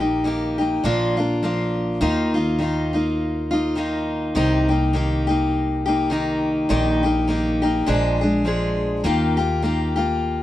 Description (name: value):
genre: acoustic folk duo or small band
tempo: 102 BPM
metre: 4/4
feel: swing 57% on 8ths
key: Eb major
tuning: A4 = 440 Hz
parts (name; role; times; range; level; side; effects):
- picked steel-string acoustic guitar; accompaniment; 0.0-10.4 s; Bb2 to Ab4; -20 LUFS; left 1 dB; none
- upright bass; bass; 0.0-10.4 s; Bb1 to Eb2; -25 LUFS; equal; none
room: little or no reverb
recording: dry, close 1970s-style studio recording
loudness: -19 LUFS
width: side -14 dB against mid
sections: 0.0-10.4 A section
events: none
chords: 0.0 Eb/Bb; 0.8 Bb; 2.0 Ebsus2; 4.4 Cm7; 6.7 Eb/Bb; 7.9 Bb7; 9.0 Ebadd9